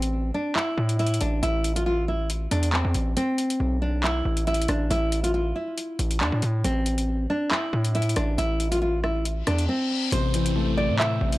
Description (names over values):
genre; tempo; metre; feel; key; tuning
hip hop, drill; 138 BPM; 4/4; half-time; A minor; A4 = 440 Hz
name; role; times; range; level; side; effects
nylon-string guitar; melody; 0.0-11.4 s; C4 to E5; -26 LUFS; equal; none
distorted 808-style bass; bass; 0.0-11.4 s; A1 to A2; -25 LUFS; equal; distortion
drill drum kit; drums; 0.0-11.4 s; handclaps, hi-hat, rim click; -29 LUFS; equal; none
reverse cymbal and downlifter; sound effects; 9.4-11.4 s; none; -33 LUFS; left 3 dB; none
dark concert grand piano; accompaniment; 10.1-11.4 s; C3 to A3; -26 LUFS; left 3 dB; none
hollow soft pad; sustained chords; 10.1-11.4 s; A3 to C5; -34 LUFS; left 1 dB; ensemble chorus
soft round pluck; second line; 11.0-11.4 s; E5; -35 LUFS; right 3 dB; none
room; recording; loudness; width
digital ambience; dry, gritty hardware recording, transformer saturation, cassette tape; -22 LUFS; side -18 dB against mid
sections
0.0-10.1 A section; 10.1-11.4 B section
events
kick muted 3.2-3.6; reverse cymbal 9.4-10.1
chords
0.0 Am; 3.2 Asus2; 6.6 Am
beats
0.12 0.56 0.99 | 1.43 1.86 2.30 2.73 | 3.17 3.60 4.04 4.47 | 4.91 5.34 5.78 6.21 | 6.64 7.08 7.51 7.95 | 8.38 8.82 9.25 9.69 | 10.12 10.56 10.99